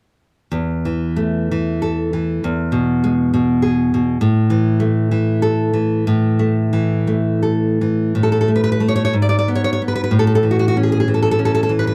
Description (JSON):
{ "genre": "romantic piece for solo classical guitar", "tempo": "50-70 BPM (dotted quarters)", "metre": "6/8", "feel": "rubato", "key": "A major", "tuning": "A4 = 439 Hz", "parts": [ { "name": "nylon-string guitar", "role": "solo", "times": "0.5-11.9 s", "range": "E2 to D5", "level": "-17 LUFS", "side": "equal", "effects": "none" } ], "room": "little or no reverb", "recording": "close, detailed microphones", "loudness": "-17 LUFS", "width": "mono", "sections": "0.5-8.2 A section; 8.2-11.9 B section", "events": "none", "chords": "0.5 A5/E; 2.4 E; 4.2 A5; 8.2 N.C.; 9.2 G#dim; 10.1 A" }